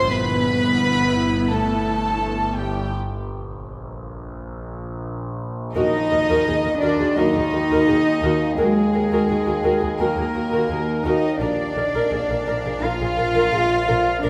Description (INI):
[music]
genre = cinematic, suspense film score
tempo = 85 BPM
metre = 4/4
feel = straight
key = Eb harmonic minor from 5.8 s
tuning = A4 = 440 Hz
[part]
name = warm chamber violin section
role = melody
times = 0.0-14.3 s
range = Eb5 to B5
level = -32 LUFS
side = equal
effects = none
[part]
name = warm chamber violin section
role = second line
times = 0.0-14.3 s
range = G4 to F5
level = -30 LUFS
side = equal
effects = none
[part]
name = warm chamber viola section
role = accompaniment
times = 0.0-14.3 s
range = B3 to Bb4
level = -27 LUFS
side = equal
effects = none
[part]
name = mellow French horn section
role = sustained chords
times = 0.0-14.3 s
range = F3 to B3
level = -28 LUFS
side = equal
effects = none
[part]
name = dark chamber cello section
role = bass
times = 0.0-14.3 s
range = G2 to F4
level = -26 LUFS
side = equal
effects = none
[part]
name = dark chamber double bass section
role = bass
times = 0.0-14.3 s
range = G1 to Eb2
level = -32 LUFS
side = equal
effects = none
[part]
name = overtone-sweeping drone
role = drone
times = 0.0-14.3 s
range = G1 to Eb2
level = -31 LUFS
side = equal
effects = chorus, built-in reverb
[part]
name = mellow clarinet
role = second line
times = 5.8-14.3 s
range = Ab4 to F5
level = -29 LUFS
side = equal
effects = none
[sound]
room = moderate scoring stage reverb, RT60 1.8 s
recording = none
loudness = -20 LUFS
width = mono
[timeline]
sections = 0.0-5.8 A section; 5.8-14.3 B section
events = break 2.9-5.8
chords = 0.1 G6; 2.9 N.C.; 5.8 Ebm; 11.4 Bb